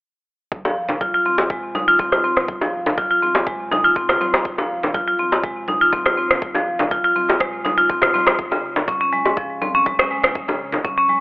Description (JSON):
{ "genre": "afro house", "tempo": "122 BPM", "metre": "4/4", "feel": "straight", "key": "F minor", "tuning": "A4 = 440 Hz", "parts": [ { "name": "electronic kick drum", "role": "drums", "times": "0.5-11.0 s", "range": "none", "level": "-28 LUFS", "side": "equal", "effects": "none" }, { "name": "congas", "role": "percussion", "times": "0.5-11.2 s", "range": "none", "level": "-31 LUFS", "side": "right 1 dB", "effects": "none" }, { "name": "marimba with medium hard mallets", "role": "arpeggios", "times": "0.7-11.2 s", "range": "Ab2 to F4", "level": "-18 LUFS", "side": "equal", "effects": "sidechain pumping, low-pass filter, digital delay" }, { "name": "bongos", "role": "percussion", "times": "0.7-10.8 s", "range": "none", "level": "-22 LUFS", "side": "left 1 dB", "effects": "none" }, { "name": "electronic rim click", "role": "drums", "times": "2.1-10.3 s", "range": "none", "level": "-20 LUFS", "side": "equal", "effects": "overdrive, low-pass filter on snare, low-pass filter on room" } ], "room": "moderate lush hall reverb, RT60 1.8 s, small room ambience", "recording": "telephone sound", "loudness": "-16 LUFS", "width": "side -23 dB against mid", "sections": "0.5-11.2 A section", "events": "filter sweep on drum 0.5-11.2; filter sweep on marimba 0.5-11.2", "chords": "none" }